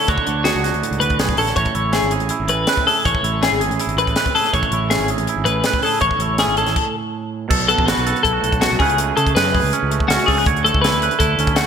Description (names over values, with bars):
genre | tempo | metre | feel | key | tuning
math rock and midwest emo | 162 BPM | 4/4 | straight | A major | A4 = 440 Hz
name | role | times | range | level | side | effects
twangy electric guitar | accompaniment | 0.0-11.7 s | A2 to C#5 | -21 LUFS | right 8 dB | none
twelve-string electric guitar | arpeggios | 0.0-11.7 s | F#4 to C#5 | -19 LUFS | left 4 dB | wide subtle chorus
fuzz fingered electric bass | bass | 0.1-11.6 s | G#1 to C#3 | -23 LUFS | equal | overdrive
crisp fusion drum kit | drums | 0.1-11.7 s | crash cymbal, hi-hat, kick drum, snare drum | -22 LUFS | left 1 dB | gated reverb
room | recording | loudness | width
moderate lush hall reverb, RT60 2.1 s | bright 1980s-style digital production | -15 LUFS | side -7 dB against mid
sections
0.0-7.5 A section; 7.5-11.7 B section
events
stop 6.8-7.5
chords
0.0 Dmaj9#11; 1.6 Amaj7; 7.5 B5; 8.8 Amaj9/C#; 10.5 Dmaj7sus2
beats
| 0.08 0.45 0.82 1.19 | 1.56 1.94 2.31 2.68 | 3.05 3.42 3.79 4.16 | 4.53 4.91 5.28 5.65 | 6.02 6.39 6.76 7.13 | 7.50 7.87 8.24 8.61 | 8.98 9.35 9.72 10.09 | 10.46 10.83 11.20 11.56